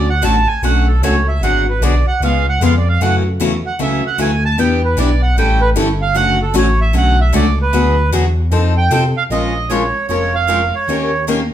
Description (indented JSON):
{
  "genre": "acoustic string swing (jazz manouche)",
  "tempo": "152 BPM",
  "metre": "4/4",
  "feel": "swing 62% on 8ths",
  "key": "unclear",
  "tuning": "A4 = 439 Hz",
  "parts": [
    { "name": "accordion", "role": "melody", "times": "0.0-11.2 s", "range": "A4 to A5", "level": "-18 LUFS", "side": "right 4 dB", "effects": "none" },
    { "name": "picked steel-string acoustic guitar", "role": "accompaniment", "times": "0.0-11.4 s", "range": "C#3 to Bb4", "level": "-20 LUFS", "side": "left 5 dB", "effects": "none" },
    { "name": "picked steel-string acoustic guitar", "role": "accompaniment", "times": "0.0-11.4 s", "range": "C#3 to B4", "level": "-23 LUFS", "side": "right 3 dB", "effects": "none" },
    { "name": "smooth synth bass", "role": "bass", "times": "0.0-11.5 s", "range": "F1 to C3", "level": "-16 LUFS", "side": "equal", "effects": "none" }
  ],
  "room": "moderate large studio reverb, RT60 0.8 s",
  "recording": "band playing live in one room",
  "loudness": "-12 LUFS",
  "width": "side -11 dB against mid",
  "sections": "0.0-9.3 A section; 9.3-11.5 B section",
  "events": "accordion solo 0.0-9.3",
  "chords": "0.0 Dmaj7; 1.4 G#m7b5; 2.2 C#7; 3.0 F#m7; 4.6 Em7; 5.4 A7; 6.2 Dmaj7; 7.7 G#m7b5; 8.5 F7; 9.3 Bbm7; 10.9 Eb7",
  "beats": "0.24 0.64 1.03 | 1.43 1.82 2.21 2.61 | 3.00 3.40 3.79 4.18 | 4.58 4.97 5.37 5.76 | 6.15 6.55 6.94 7.33 | 7.73 8.12 8.52 8.91 | 9.31 9.70 10.10 10.49 | 10.89 11.28"
}